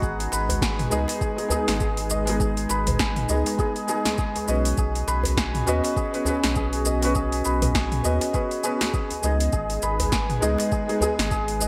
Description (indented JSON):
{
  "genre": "organic downtempo",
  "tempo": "101 BPM",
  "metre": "4/4",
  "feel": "swing 58% on 16ths",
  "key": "G# minor pentatonic",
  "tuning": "A4 = 441 Hz",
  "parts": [
    { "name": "felt-muted upright piano", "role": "accompaniment", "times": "0.0-11.7 s", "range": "G#3 to B4", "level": "-31 LUFS", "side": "equal", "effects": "vintage 12-bit sampler grit, sidechain pumping, digital delay" },
    { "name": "warbly tape-like pad", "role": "sustained chords", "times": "0.0-11.7 s", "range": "G#3 to B4", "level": "-34 LUFS", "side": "equal", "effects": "chorus, built-in reverb, sidechain pumping" },
    { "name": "santur", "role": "arpeggios", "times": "0.0-11.7 s", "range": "D#4 to G#5", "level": "-30 LUFS", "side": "equal", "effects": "digital delay" },
    { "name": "warm sub bass", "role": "bass", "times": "0.0-11.7 s", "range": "G#1 to D#2", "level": "-29 LUFS", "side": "equal", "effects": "sidechain pumping" },
    { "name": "deep house drum kit", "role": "drums", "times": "0.0-11.7 s", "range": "hi-hat, shaker, snare drum, toms", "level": "-30 LUFS", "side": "equal", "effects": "overdrive, gated reverb" },
    { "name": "electronic kick drum", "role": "drums", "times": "0.0-11.5 s", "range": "none", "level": "-30 LUFS", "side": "equal", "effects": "overdrive" },
    { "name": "djembe", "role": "percussion", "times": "0.3-11.7 s", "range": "none", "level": "-34 LUFS", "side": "equal", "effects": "none" }
  ],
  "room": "moderate plate reverb, RT60 1.3 s",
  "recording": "bright 1980s-style digital production",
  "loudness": "-24 LUFS",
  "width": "mono",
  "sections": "0.0-11.7 A section",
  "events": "none",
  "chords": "0.0 G#m; 4.8 Bsus2; 9.5 G#m"
}